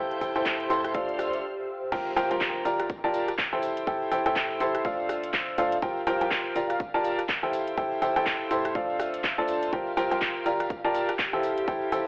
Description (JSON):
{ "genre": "piano house", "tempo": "123 BPM", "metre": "4/4", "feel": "swing 59% on 16ths", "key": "D minor", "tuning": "A4 = 439 Hz", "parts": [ { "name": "rich studio violin section", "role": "sustained chords", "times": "0.0-1.4 s", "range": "C5 to G6", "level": "-39 LUFS", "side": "equal", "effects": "sidechain pumping, cassette tape" }, { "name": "bright upright piano", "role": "riff", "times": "0.0-12.0 s", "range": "D4 to C6", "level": "-26 LUFS", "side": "equal", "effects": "sidechain pumping, cassette tape, tape echo" }, { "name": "organ-like FM bass", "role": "bass", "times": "0.0-12.0 s", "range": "G1 to A2", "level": "-43 LUFS", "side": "equal", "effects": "sidechain pumping" }, { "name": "granular cloud pad", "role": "texture", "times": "0.0-12.1 s", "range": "G4 to F5", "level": "-37 LUFS", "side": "equal", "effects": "none" }, { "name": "house drum kit", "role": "drums", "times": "0.1-12.0 s", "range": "crash cymbal, handclaps, hi-hat, rim click", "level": "-30 LUFS", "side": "equal", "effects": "cassette tape" }, { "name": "electronic kick drum", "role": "drums", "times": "0.2-11.8 s", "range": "none", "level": "-36 LUFS", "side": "equal", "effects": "cassette tape" }, { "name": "tambourine", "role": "percussion", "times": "0.2-12.0 s", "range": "none", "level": "-52 LUFS", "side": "left 1 dB", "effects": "none" }, { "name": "impact", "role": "sound effects", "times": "2.0-3.9 s", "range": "none", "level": "-49 LUFS", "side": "equal", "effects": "none" } ], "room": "light reverb", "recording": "home recording on cassette, telephone sound", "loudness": "-24 LUFS", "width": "side -30 dB against mid", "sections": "0.0-1.9 A section; 1.9-12.1 B section", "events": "stop 1.4-1.9; drop 1.9-12.1; impact 1.9-3.9", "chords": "0.0 Am7; 0.9 Dm7; 1.9 C7sus4; 2.7 Gm7; 3.6 Am7; 4.8 Dm7; 5.8 C7sus4; 6.6 Gm7; 7.5 Am7; 8.8 Dm7; 9.7 C7sus4; 10.5 Gm7; 11.4 Am7" }